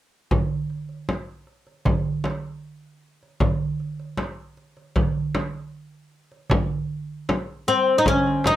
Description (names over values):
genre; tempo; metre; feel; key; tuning
Arabic maqam ensemble; 78 BPM; 4/4; straight; unclear; A4 = 440 Hz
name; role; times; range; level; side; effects
darbuka; percussion; 0.3-8.6 s; none; -27 LUFS; right 4 dB; none
frame drum; percussion; 0.3-8.6 s; none; -24 LUFS; left 1 dB; none
oud; melody; 7.7-8.6 s; C4 to Eb4; -17 LUFS; left 2 dB; none
room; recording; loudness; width
moderate studio reverb, RT60 0.5 s; none; -22 LUFS; side -13 dB against mid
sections
0.3-6.5 A section; 6.5-8.6 B section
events
none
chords
none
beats
| 0.31 1.09 1.86 2.64 | 3.41 4.19 4.96 5.74 | 6.51 7.28 8.06